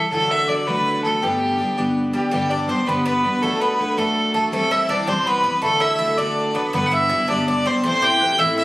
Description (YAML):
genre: celtic folk, Celtic jig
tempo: 109 BPM (dotted quarters)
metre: 6/8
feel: straight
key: G major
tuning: A4 = 441 Hz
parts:
  - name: rich fiddle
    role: melody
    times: 0.0-8.6 s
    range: G4 to G5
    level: -21 LUFS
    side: equal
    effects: none
  - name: celesta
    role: second line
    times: 0.0-8.6 s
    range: G5 to G6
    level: -24 LUFS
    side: equal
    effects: none
  - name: picked twelve-string acoustic guitar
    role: accompaniment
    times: 0.0-8.6 s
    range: G2 to A4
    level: -22 LUFS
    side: equal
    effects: none
  - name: Irish bouzouki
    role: second line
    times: 2.1-8.6 s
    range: G3 to G4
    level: -27 LUFS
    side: right 2 dB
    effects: none
room: wet recital hall reverb, RT60 1.4 s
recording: recorded on a phone in the room, studio reverb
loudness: -17 LUFS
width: side -18 dB against mid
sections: 0.0-2.3 A section; 2.3-8.6 A section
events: none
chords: 0.1 D; 1.2 G; 3.4 D/F#; 4.5 C; 5.6 D; 6.7 G; 7.8 Am